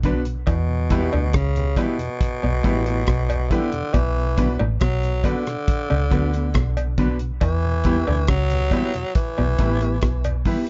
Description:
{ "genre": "roots reggae", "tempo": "69 BPM", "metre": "4/4", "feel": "straight", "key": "unclear", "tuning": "A4 = 440 Hz", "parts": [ { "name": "growling tenor saxophone", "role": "melody", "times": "0.0-10.4 s", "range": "B2 to F#3", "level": "-29 LUFS", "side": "equal", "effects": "none" }, { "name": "mellow electric guitar", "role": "accompaniment", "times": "0.0-10.6 s", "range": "B3 to B4", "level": "-29 LUFS", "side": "equal", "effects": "none" }, { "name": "mellow tonewheel organ", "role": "accompaniment", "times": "0.0-10.6 s", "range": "E2 to B3", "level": "-31 LUFS", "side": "equal", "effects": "chorus vibrato, slow rotary speaker" }, { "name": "bright upright piano", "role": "stabs", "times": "0.0-10.6 s", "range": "D4 to B4", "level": "-33 LUFS", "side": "equal", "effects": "none" }, { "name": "vintage muted fingered electric bass", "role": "bass", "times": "0.0-10.4 s", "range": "A1 to E2", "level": "-25 LUFS", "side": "equal", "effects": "none" }, { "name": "damped 70s drum kit", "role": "drums", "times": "0.0-10.7 s", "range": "hi-hat, kick drum, rim click", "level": "-25 LUFS", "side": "equal", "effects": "none" }, { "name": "semi-hollow electric guitar", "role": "riff", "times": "0.5-10.3 s", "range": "A2 to E3", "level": "-30 LUFS", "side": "equal", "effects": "ensemble chorus" }, { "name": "cowbell", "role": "percussion", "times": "0.5-10.4 s", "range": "none", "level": "-32 LUFS", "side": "equal", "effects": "none" } ], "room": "light reverb", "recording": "dark, warm production, nothing above 7.7 kHz", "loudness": "-21 LUFS", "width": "mono", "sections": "0.0-10.7 A section", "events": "none", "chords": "0.5 Em; 3.9 Bm; 7.4 Em", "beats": "| 0.47 1.34 2.21 3.08 | 3.94 4.81 5.68 6.55 | 7.42 8.29 9.15 10.02" }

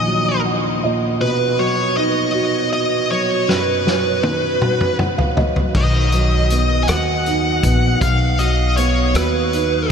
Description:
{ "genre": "six-eight pop ballad", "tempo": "53 BPM (dotted quarters)", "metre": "6/8", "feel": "straight", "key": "unclear", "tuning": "A4 = 440 Hz", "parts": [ { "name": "high-gain lead guitar", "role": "melody", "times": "0.0-9.9 s", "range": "B4 to G#5", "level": "-19 LUFS", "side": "equal", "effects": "distortion, analog delay" }, { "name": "dark upright piano", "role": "accompaniment", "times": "0.0-9.9 s", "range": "A#1 to F#5", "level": "-20 LUFS", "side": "right 2 dB", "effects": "lush chorus" }, { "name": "loose indie drum kit", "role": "drums", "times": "3.5-9.7 s", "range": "crash cymbal, hi-hat, kick drum, rim click, snare drum, toms", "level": "-21 LUFS", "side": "left 1 dB", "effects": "none" }, { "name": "upright bass", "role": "bass", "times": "5.7-9.9 s", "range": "A#1 to D#2", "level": "-18 LUFS", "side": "left 1 dB", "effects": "none" } ], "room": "wet huge ambient reverb, RT60 7.9 s", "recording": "dreamy mix soaked in reverb", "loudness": "-15 LUFS", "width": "side -6 dB against mid", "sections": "0.0-5.7 A section; 5.7-9.9 B section", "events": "upright piano fill 0.1-1.2, 4.6-5.7; drum fill 3.5-5.7", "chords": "0.0 D#m; 1.2 B", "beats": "0.07 | 1.20 2.34 | 3.48 4.61 | 5.75 6.88 | 8.02 9.15" }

